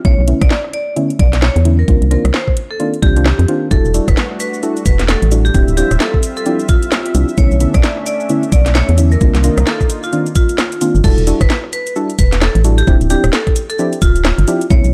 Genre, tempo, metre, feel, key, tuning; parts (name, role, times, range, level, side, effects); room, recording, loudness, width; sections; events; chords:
UK garage, two-step garage; 131 BPM; 4/4; swing 60% on 16ths; A4 = 440 Hz
deep mellow chord stab; stabs; 0.0-14.9 s; D3 to A4; -21 LUFS; equal; chorus, cassette tape, delay
organ-like FM bass; bass; 0.0-14.9 s; D1 to F2; -15 LUFS; equal; tube saturation
electronic kick drum; drums; 0.0-14.8 s; -15 LUFS; equal; studio reverb
garage drum kit; drums; 0.0-14.9 s; crash cymbal, hi-hat, rim click, shaker, snare drum; -22 LUFS; equal; studio reverb
vibraphone with hard mallets; melody; 0.1-14.9 s; F4 to D5; -23 LUFS; equal; delay
warm analog pad; sustained chords; 3.7-11.0 s; G3 to E5; -28 LUFS; equal; chorus, sidechain pumping
digital ambience; dark, warm production; -13 LUFS; mono
0.0-11.0 A section; 11.0-14.9 B section
drop 11.0-14.9
0.0 Bm11; 1.9 Cm11; 3.7 Em11; 5.5 Dm11; 7.4 Bm11; 9.2 Cm11; 11.0 Em11; 12.9 Dm11